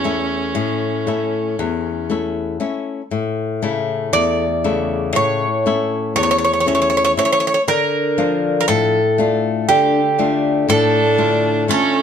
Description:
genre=greek folk, Greek bouzouki band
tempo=118 BPM (eighths)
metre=9/8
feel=straight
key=A phrygian dominant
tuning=A4 = 440 Hz
part: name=Greek bouzouki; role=melody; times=0.0-12.0 s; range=G4 to D5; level=-17 LUFS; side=right 3 dB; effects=none
part: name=clear violin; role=second line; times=0.0-2.1, 10.7-12.0 s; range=C#4 to D4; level=-21 LUFS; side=right 3 dB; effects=none
part: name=flamenco guitar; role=accompaniment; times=0.0-12.0 s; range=E2 to F4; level=-19 LUFS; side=left 5 dB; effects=none
room=moderate studio reverb, RT60 0.7 s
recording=none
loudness=-15 LUFS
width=side -8 dB against mid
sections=0.0-3.1 A section; 3.1-12.0 B section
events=none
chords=0.0 A; 7.7 Dm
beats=0.05 0.56 1.07 1.58 2.09 2.60 | 3.11 3.62 4.13 4.64 5.14 5.65 6.16 6.66 7.17 | 7.67 8.18 8.68 9.18 9.69 10.19 10.69 11.19 11.70

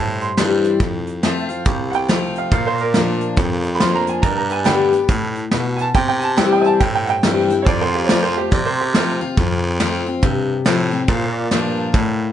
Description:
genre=honky-tonk and classic country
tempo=140 BPM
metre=4/4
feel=swing 61% on 8ths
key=F major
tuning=A4 = 440 Hz
part: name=bright upright piano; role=second line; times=0.0-9.8 s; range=F4 to C6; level=-22 LUFS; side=right 5 dB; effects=none
part: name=picked steel-string acoustic guitar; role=accompaniment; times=0.0-12.3 s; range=F2 to G4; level=-20 LUFS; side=left 5 dB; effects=none
part: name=pedal steel guitar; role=sustained chords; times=0.0-12.3 s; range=G4 to G5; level=-29 LUFS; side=right 2 dB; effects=none
part: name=growling baritone saxophone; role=bass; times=0.0-12.3 s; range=C2 to C3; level=-23 LUFS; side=right 1 dB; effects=none
part: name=soft brush drum kit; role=drums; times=0.2-12.1 s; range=hi-hat, kick drum, snare drum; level=-19 LUFS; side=right 1 dB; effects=none
room=little or no reverb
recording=nothing above 10.4 kHz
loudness=-15 LUFS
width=side -10 dB against mid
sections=0.0-7.7 A section; 7.7-12.3 B section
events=upright piano solo 0.0-7.7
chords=0.0 C; 0.8 F; 2.5 Bb; 4.2 G; 6.0 C; 7.7 F; 11.1 Bb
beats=0.37 | 0.80 1.23 1.66 2.09 | 2.52 2.95 3.38 3.81 | 4.24 4.67 5.09 5.52 | 5.95 6.38 6.81 7.24 | 7.67 8.09 8.52 8.95 | 9.38 9.80 10.23 10.66 | 11.09 11.52 11.94

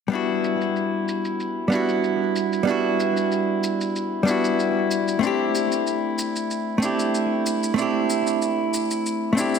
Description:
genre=sunset chillout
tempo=94 BPM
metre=4/4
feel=swing 53% on 16ths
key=E minor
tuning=A4 = 440 Hz
part: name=hollow-body jazz guitar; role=accompaniment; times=0.1-9.6 s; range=G3 to G4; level=-21 LUFS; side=moving between left 5 dB and right 6 dB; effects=auto-pan, digital delay
part: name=shaker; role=drums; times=0.1-9.6 s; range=none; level=-33 LUFS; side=equal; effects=low-pass filter on perc, studio reverb
room=wet lush hall reverb, RT60 2.7 s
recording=dense, heavily limited modern master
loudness=-20 LUFS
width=side -6 dB against mid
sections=0.1-9.6 A section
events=none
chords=0.1 Em9; 5.2 C6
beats=| 0.12 0.75 1.39 2.03 | 2.67 3.31 3.94 4.58 | 5.22 5.86 6.50 7.14 | 7.78 8.41 9.05

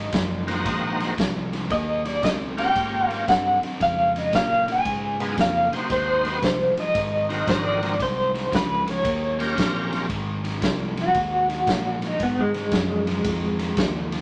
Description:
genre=electric blues shuffle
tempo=114 BPM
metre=4/4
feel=swing 66% on 8ths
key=Ab mixolydian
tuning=A4 = 436 Hz
part: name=electric guitar through a small old amp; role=melody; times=0.0-13.9 s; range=Ab3 to Ab5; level=-25 LUFS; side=equal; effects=tremolo
part: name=crunchy overdriven guitar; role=riff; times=0.0-14.2 s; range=Ab2 to C4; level=-33 LUFS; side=equal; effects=none
part: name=fingered electric bass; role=bass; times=0.0-14.2 s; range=Gb1 to Bb2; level=-33 LUFS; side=equal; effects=none
part: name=raw garage drum kit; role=drums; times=0.1-14.2 s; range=kick drum, ride cymbal, snare drum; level=-30 LUFS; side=equal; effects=none
part: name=bright tonewheel organ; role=accompaniment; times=0.5-10.1 s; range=Bb3 to C5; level=-30 LUFS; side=equal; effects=slow rotary speaker, overdrive, chorus vibrato
room=moderate studio reverb, RT60 0.7 s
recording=none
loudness=-23 LUFS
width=mono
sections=0.0-10.1 A section; 10.1-14.2 B section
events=clean electric guitar solo 10.1-14.2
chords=0.0 Ab7; 1.7 Eb7; 3.8 Db7; 5.9 Ab7; 9.0 Eb7; 10.1 Ab7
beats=0.13 0.65 1.18 | 1.70 2.23 2.75 3.28 | 3.80 4.33 4.85 5.38 | 5.90 6.43 6.95 7.47 | 8.00 8.53 9.05 9.57 | 10.10 10.62 11.15 11.67 | 12.20 12.72 13.25 13.77

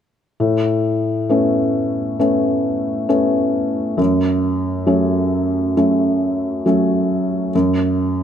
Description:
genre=folk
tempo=67 BPM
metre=4/4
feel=straight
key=A major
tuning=A4 = 440 Hz
part: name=felt-muted upright piano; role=melody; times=0.4-8.2 s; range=F#2 to C#4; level=-16 LUFS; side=equal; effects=none
room=light reverb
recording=none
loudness=-16 LUFS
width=side -8 dB against mid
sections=0.4-8.2 A section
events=none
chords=0.4 Aadd9; 4.0 F#m; 7.5 N.C.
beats=| 0.40 1.30 2.20 3.09 | 3.99 4.88 5.77 6.66 | 7.54

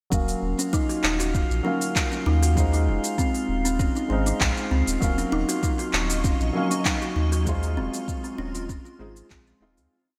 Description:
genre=organic downtempo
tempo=98 BPM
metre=4/4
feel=swing 53% on 16ths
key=Eb dorian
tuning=A4 = 440 Hz
part: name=felt-muted upright piano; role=accompaniment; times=0.1-9.9 s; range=Gb3 to F5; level=-33 LUFS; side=equal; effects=sidechain pumping, low-pass filter, digital delay
part: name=kalimba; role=arpeggios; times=0.1-9.9 s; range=C4 to Gb4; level=-31 LUFS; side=equal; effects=digital delay
part: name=warm sub bass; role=bass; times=0.1-9.9 s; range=Eb1 to Eb2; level=-27 LUFS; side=equal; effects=sidechain pumping
part: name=deep house drum kit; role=drums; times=0.1-9.9 s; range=handclaps, hi-hat, shaker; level=-31 LUFS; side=equal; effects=gated reverb
part: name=electronic kick drum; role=drums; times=0.1-9.4 s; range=none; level=-29 LUFS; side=equal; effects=none
part: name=drifting glass-harmonics texture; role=texture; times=0.5-9.9 s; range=F4 to F5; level=-38 LUFS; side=equal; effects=chorus, built-in reverb
part: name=granular cloud pad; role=sustained chords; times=5.6-9.9 s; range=Gb3 to Db6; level=-36 LUFS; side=equal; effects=built-in reverb, analog chorus, sidechain pumping
room=moderate lush hall reverb, RT60 2.7 s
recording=bright 1980s-style digital production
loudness=-24 LUFS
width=mono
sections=0.1-9.9 groove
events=filter sweep on felt piano 0.1-9.9; fade-out 6.7-9.9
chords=0.1 Ebm7; 2.6 Bbm11/Eb (rootless); 5.0 Ebm7; 7.5 Dbmaj7/Eb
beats=| 0.12 0.73 1.34 1.96 | 2.57 3.18 3.79 4.41 | 5.02 5.63 6.24 6.86 | 7.47 8.08 8.69 9.30

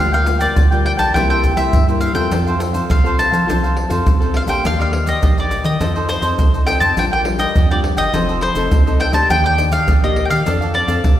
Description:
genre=samba and choro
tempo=103 BPM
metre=4/4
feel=straight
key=unclear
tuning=A4 = 439 Hz
part: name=mandolin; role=melody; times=0.0-11.2 s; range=C5 to A5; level=-19 LUFS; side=equal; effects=none
part: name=cavaquinho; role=accompaniment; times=0.0-11.2 s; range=D4 to G5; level=-24 LUFS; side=right 1 dB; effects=none
part: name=nylon-string guitar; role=accompaniment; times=0.0-11.2 s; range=G2 to A4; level=-23 LUFS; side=left 4 dB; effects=none
part: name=round analog bass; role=bass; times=0.0-11.2 s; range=F1 to F3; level=-20 LUFS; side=equal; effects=none
part: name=egg shaker, pandeiro and surdo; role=percussion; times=0.1-11.2 s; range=none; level=-18 LUFS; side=right 1 dB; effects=none
room=wet scoring stage reverb, RT60 1.9 s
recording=recorded in a church or concert hall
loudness=-13 LUFS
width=side -12 dB against mid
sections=0.0-11.2 A section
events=none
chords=0.0 Gm7/D; 1.1 C7; 2.3 F; 4.6 Ebmaj7; 5.8 F7; 7.0 Bb6; 8.1 F7; 9.3 Ebmaj7; 10.5 F6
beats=0.56 1.15 1.73 | 2.31 2.90 3.48 4.06 | 4.64 5.23 5.81 6.39 | 6.97 7.55 8.14 8.72 | 9.30 9.88 10.46 11.04

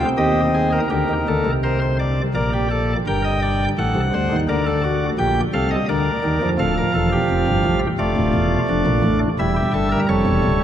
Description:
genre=classical, baroque-style 4-part fugue for pipe organ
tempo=85 BPM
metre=4/4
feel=straight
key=G minor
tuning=A4 = 440 Hz
part: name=chamber organ, cornet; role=solo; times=0.0-10.6 s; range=C#1 to G5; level=-17 LUFS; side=equal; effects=none
room=wet cathedral reverb, RT60 5.9 s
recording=in a vast, echoing space, nothing above 10.6 kHz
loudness=-17 LUFS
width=side -10 dB against mid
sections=0.9-10.6 A section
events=none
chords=0.0 Cm; 0.9 Gm; 2.3 Gm/Bb; 3.8 D7/A; 5.2 Gm/Bb; 6.6 Dm; 9.4 A7/E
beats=0.18 | 0.91 1.63 2.35 3.06 | 3.78 4.49 5.19 5.89 | 6.58 7.28 7.98 8.68 | 9.38 10.09

